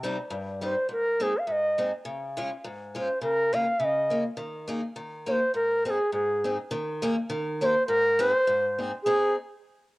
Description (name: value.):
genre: alpine folk.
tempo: 103 BPM.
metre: 2/4.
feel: swing 54% on 8ths.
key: Ab major.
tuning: A4 = 436 Hz.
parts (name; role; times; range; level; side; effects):
picked acoustic archtop guitar; accompaniment; 0.0-9.3 s; G2 to Ab4; -31 LUFS; left 1 dB; cassette tape.
bright reedy bansuri; melody; 0.6-9.3 s; Ab4 to F5; -23 LUFS; equal; none.
room: moderate spring reverb, RT60 1.2 s, small room ambience.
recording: home recording on cassette.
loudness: -24 LUFS.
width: side -21 dB against mid.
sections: 0.0-6.7 A section; 6.7-9.0 B section.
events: none.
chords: 0.0 Cm; 0.9 Ab; 2.1 Db; 3.2 Bbm/Db; 4.4 Ebsus4; 5.0 Eb; 5.5 Ab; 6.7 Ebsus4; 7.3 Eb; 7.9 Ab.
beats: 0.31 | 0.89 1.47 | 2.05 2.64 | 3.22 3.79 | 4.37 4.95 | 5.54 6.12 | 6.71 7.30 | 7.88 8.46 | 9.04.